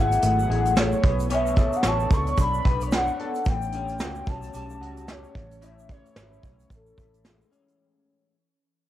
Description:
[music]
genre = indie pop, bedroom pop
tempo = 111 BPM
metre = 4/4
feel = swing 60% on 16ths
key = A major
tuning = A4 = 443 Hz
[part]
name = warbly nostalgic lead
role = melody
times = 0.0-7.5 s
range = A4 to C#6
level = -27 LUFS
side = equal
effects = lush chorus, cassette tape
[part]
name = electric guitar through a small old amp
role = accompaniment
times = 0.0-8.4 s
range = A2 to C#5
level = -30 LUFS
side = left 6 dB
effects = analog chorus, vibrato effect, cassette tape
[part]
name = ethereal airy pad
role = sustained chords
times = 0.0-7.8 s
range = E3 to G#4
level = -36 LUFS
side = right 2 dB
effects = ensemble chorus, built-in reverb, cassette tape
[part]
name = vintage muted fingered electric bass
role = bass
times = 0.0-7.4 s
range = G#1 to C#2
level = -28 LUFS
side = right 1 dB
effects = tube saturation
[part]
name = soft brush drum kit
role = drums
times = 0.1-7.8 s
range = hi-hat, kick drum, snare drum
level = -24 LUFS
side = right 1 dB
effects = vintage 12-bit sampler grit, cassette tape
[part]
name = egg shaker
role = percussion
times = 0.1-7.8 s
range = none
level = -47 LUFS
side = right 11 dB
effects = none
[sound]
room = moderate spring reverb, RT60 1.9 s, small room ambience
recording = home recording on cassette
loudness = -21 LUFS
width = side -13 dB against mid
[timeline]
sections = 0.0-7.8 A section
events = fade-out 0.0-7.8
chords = 0.0 F#m9; 1.0 Bm9; 3.5 A13; 5.4 Amaj7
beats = 0.23 0.77 | 1.30 1.84 2.38 2.92 | 3.46 4.00 4.54 5.08 | 5.62 6.17 6.71 7.25

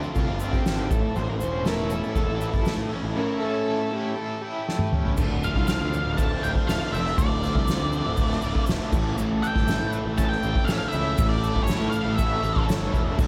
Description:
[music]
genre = psychedelic rock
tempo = 120 BPM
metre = 4/4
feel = straight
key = D minor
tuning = A4 = 438 Hz
[part]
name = crunchy overdriven guitar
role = riff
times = 0.0-13.3 s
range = D2 to A4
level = -32 LUFS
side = equal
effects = tremolo, dub echo
[part]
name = egg shaker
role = percussion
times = 0.0-13.3 s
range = none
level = -48 LUFS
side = equal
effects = none
[part]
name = combo organ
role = sustained chords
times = 0.1-13.3 s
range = C#3 to E5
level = -34 LUFS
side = equal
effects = lush chorus
[part]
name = fuzz picked electric bass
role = bass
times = 0.2-13.3 s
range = D1 to A2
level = -31 LUFS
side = equal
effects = overdrive
[part]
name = soft-mallet drum kit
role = drums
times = 0.2-13.3 s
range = crash cymbal, kick drum, ride cymbal, snare drum, toms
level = -28 LUFS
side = equal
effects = none
[part]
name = octave-fuzz lead guitar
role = melody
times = 5.4-12.6 s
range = C#5 to A5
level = -32 LUFS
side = equal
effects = distortion, dub echo
[sound]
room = little or no reverb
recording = echo-heavy mix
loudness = -25 LUFS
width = mono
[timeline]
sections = 0.0-5.2 A section; 5.2-13.3 B section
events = transistor combo organ solo 0.0-5.2; drum fill 4.7-5.2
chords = 0.0 Dm7; 0.9 A; 5.2 Dm7; 8.9 A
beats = 0.17 0.67 | 1.17 1.67 2.17 2.67 | 3.17 3.67 4.17 4.67 | 5.17 5.68 6.18 6.68 | 7.18 7.68 8.18 8.68 | 9.18 9.68 10.18 10.68 | 11.18 11.68 12.18 12.69 | 13.19

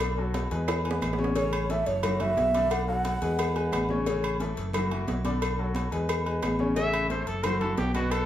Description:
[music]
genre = latin, salsa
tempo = 177 BPM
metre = 4/4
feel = straight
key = A major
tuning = A4 = 440 Hz
[part]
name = bright grand piano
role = accompaniment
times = 0.0-8.2 s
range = B2 to D5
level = -32 LUFS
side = left 2 dB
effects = none
[part]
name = fingered electric bass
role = bass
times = 0.0-8.3 s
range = F#1 to E2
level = -30 LUFS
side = equal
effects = none
[part]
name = agogo bells and timbales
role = percussion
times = 0.0-8.3 s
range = none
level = -34 LUFS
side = right 1 dB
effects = none
[part]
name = claves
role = percussion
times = 0.0-8.3 s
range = none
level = -43 LUFS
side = right 5 dB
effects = none
[part]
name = congas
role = percussion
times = 0.0-8.3 s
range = none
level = -34 LUFS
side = equal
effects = none
[part]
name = cowbell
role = percussion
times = 0.0-8.3 s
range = none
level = -35 LUFS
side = left 6 dB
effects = none
[part]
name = breathy alto ocarina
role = melody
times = 1.4-3.9 s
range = C#5 to F#5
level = -28 LUFS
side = right 2 dB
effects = none
[part]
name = clear trumpet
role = melody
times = 6.8-8.3 s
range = F#4 to E5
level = -30 LUFS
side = equal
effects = none
[sound]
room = wet large studio reverb, RT60 0.9 s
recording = band playing live in one room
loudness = -25 LUFS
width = side -11 dB against mid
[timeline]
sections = 0.0-6.8 A section; 6.8-8.3 B section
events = drum fill 0.7-1.4; trumpet solo 6.8-8.3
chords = 0.0 Bm7; 0.7 E; 1.4 A; 2.0 Dmaj13/F#; 2.7 Bm7; 3.4 E; 4.1 A; 4.7 Bmadd11/F#; 5.4 Bm7; 6.1 E; 6.8 A; 7.4 Am13/F#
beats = | 0.00 0.34 0.68 1.02 | 1.36 1.70 2.03 2.37 | 2.71 3.05 3.39 3.72 | 4.06 4.40 4.74 5.08 | 5.42 5.75 6.09 6.43 | 6.77 7.10 7.44 7.78 | 8.12

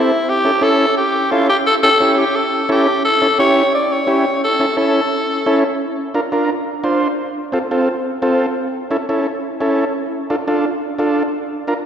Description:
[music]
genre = latin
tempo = 174 BPM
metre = 4/4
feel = straight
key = unclear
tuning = A4 = 440 Hz
[part]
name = raspy alto saxophone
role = melody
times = 0.0-5.6 s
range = E4 to D5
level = -15 LUFS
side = equal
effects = none
[part]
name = combo organ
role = accompaniment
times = 0.0-11.7 s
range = C4 to C5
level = -16 LUFS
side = equal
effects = none
[sound]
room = wet church reverb, RT60 3.1 s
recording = recorded in a church or concert hall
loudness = -14 LUFS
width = side -8 dB against mid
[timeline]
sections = 0.0-5.8 A section; 5.8-11.9 B section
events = none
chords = 0.3 A; 5.8 Bb; 7.2 F; 8.6 A; 9.9 Dm; 11.3 Bb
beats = | 0.28 0.62 0.97 1.31 | 1.66 2.00 2.35 2.69 | 3.04 3.38 3.73 4.07 | 4.42 4.76 5.11 5.45 | 5.80 6.14 6.49 6.83 | 7.18 7.53 7.87 8.22 | 8.56 8.91 9.26 9.60 | 9.95 10.29 10.64 10.98 | 11.33 11.68

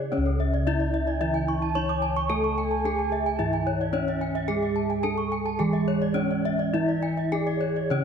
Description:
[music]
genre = Balinese gamelan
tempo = 109 BPM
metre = 4/4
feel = uneven beats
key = C# pelog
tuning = A4 = 439 Hz
[part]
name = gamelan-type bronze metallophone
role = melody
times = 0.0-8.0 s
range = C#4 to C#5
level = -29 LUFS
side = left 2 dB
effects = none
[part]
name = gamelan-type bronze metallophone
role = accompaniment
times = 0.0-8.0 s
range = C#3 to A3-20c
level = -30 LUFS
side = right 2 dB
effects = none
[part]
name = gamelan-type bronze metallophone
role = arpeggios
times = 0.0-7.9 s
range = A4-20c to D6+20c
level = -33 LUFS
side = right 6 dB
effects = none
[part]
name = gamelan-type bossed gongs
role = bass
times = 0.0-8.0 s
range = C#2 to A4-20c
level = -29 LUFS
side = left 1 dB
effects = none
[part]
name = gamelan-type bronze metallophone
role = arpeggios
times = 0.1-8.0 s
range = C#5 to C#6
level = -32 LUFS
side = left 5 dB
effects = none
[part]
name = mellow bansuri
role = second line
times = 1.1-8.0 s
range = C#5 to A5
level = -34 LUFS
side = right 7 dB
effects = none
[sound]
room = moderate concert hall reverb, RT60 2.1 s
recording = none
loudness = -23 LUFS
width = side -7 dB against mid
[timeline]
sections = 0.0-8.0 A section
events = none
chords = none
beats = | 0.12 0.66 1.21 1.76 | 2.30 2.85 3.40 3.94 | 4.49 5.04 5.60 6.16 | 6.74 7.32 7.91

